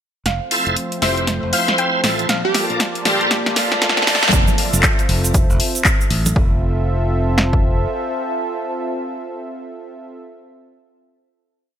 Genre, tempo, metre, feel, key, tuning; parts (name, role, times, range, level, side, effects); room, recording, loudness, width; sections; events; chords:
deep house; 118 BPM; 4/4; swing 61% on 16ths; F major; A4 = 440 Hz
soft round pluck; melody; 0.3-4.0 s; E5 to G5; -26 LUFS; equal; chorus, digital delay
warm analog pad; sustained chords; 0.3-10.2 s; F3 to A5; -26 LUFS; right 1 dB; chorus, sidechain pumping
modern bright fingered electric bass; bass; 0.3-7.8 s; F1 to D2; -21 LUFS; equal; sidechain pumping
house drum kit; drums; 0.3-6.3 s; handclaps, hi-hat, snare drum; -19 LUFS; left 1 dB
warbly tape-like pad; texture; 0.3-10.4 s; F3 to A5; -27 LUFS; equal; chorus, built-in reverb, sidechain pumping
bright tonewheel organ; stabs; 0.5-4.3 s; C4 to F5; -22 LUFS; equal; chorus vibrato, slow rotary speaker, sidechain pumping, digital delay
plucky unison lead; melody; 1.0-3.6 s; G4 to C5; -23 LUFS; right 2 dB; wide subtle chorus, digital delay
reverse cymbal; sound effects; 3.5-4.3 s; -23 LUFS; right 5 dB
house drum kit; drums; 4.3-7.6 s; kick drum, snare drum; -17 LUFS; equal
tube shaker; percussion; 4.3-6.3 s; -25 LUFS; right 4 dB
congas; percussion; 4.5-6.3 s; -24 LUFS; right 2 dB; sidechain pumping on perc
light reverb; bright 1980s-style digital production, high-pass filter; -15 LUFS; side -9 dB against mid
0.3-4.3 build; 4.3-6.4 outro; 6.4-10.4 final chord
build-up 0.3-4.3; drum fill 0.3-4.3; reverse cymbal 3.5-4.3; fade-out on ambient pad 4.3-6.4; filter sweep on analog synth pad 4.3-6.4
0.3 Fmaj7; 2.3 Bbmaj7; 4.3 Fmaj7